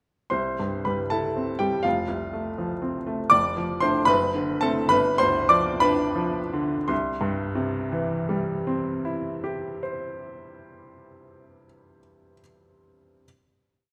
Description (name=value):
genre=classical, romantic character piece for solo piano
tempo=51-84 BPM (dotted quarters)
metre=6/8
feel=rubato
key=C major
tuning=A4 = 443 Hz
part: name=bright upright piano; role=solo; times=0.3-13.3 s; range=F1 to D6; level=-25 LUFS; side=equal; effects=none
room=wet recital hall reverb, RT60 1.7 s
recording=none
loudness=-25 LUFS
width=mono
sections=0.3-6.9 A section; 6.9-10.9 final chord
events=slowing down 2.6-6.9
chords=0.3 C; 1.9 F; 3.3 Dm/F; 4.1 D7/F#; 4.9 G7; 6.9 C